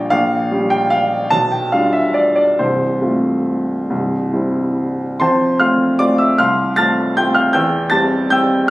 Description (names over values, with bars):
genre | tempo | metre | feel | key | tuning
classical, piano waltz | 133-164 BPM | 3/4 | rubato | F major | A4 = 440 Hz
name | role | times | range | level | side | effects
warm upright piano | solo | 0.0-8.7 s | C1 to A6 | -13 LUFS | equal | none
room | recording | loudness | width
moderate recital hall reverb, RT60 1.5 s | recorded on a phone in the room, club reverb | -13 LUFS | side -18 dB against mid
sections
0.0-5.2 A section; 5.2-8.7 B section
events
none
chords
0.1 Gm7b5/Bb; 1.3 G7/B; 2.6 F/C; 3.9 C; 5.2 F; 7.5 C/E